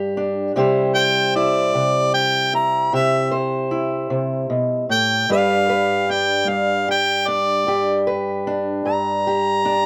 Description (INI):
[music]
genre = acoustic country blues, solo or duo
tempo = 51 BPM (dotted quarters)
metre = 12/8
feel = straight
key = G major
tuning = A4 = 443 Hz
[part]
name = fingerpicked steel-string acoustic guitar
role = accompaniment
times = 0.0-9.9 s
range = G2 to C5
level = -22 LUFS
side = equal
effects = none
[part]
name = warm harmonica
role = melody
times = 0.9-9.9 s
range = D5 to Bb5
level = -20 LUFS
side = equal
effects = none
[sound]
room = light reverb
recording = close, detailed microphones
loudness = -19 LUFS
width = mono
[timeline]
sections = 0.0-9.9 A section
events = none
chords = 0.0 G; 0.6 C; 5.3 G